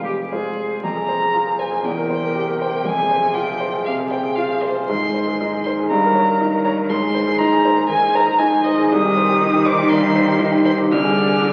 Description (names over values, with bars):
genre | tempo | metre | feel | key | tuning
quick classical-period movement for piano trio | 119 BPM | 4/4 | rubato | F minor | A4 = 440 Hz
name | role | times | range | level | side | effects
rich violin | melody | 0.0-11.5 s | Ab4 to F6 | -22 LUFS | equal | none
clear cello | second line | 0.0-11.5 s | C3 to Ab4 | -26 LUFS | equal | none
clear baby grand piano | accompaniment | 0.0-11.5 s | F1 to D5 | -21 LUFS | equal | none
room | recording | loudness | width
wet recital hall reverb, RT60 1.7 s | very old 78 rpm record, vinyl crackle | -18 LUFS | mono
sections
0.8-11.5 A section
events
none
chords
0.0 Fm; 1.9 C7/E; 2.9 Fm; 4.9 Ab; 5.9 Eb7/G; 6.9 Ab; 8.9 Cm; 10.9 Dm7b5/C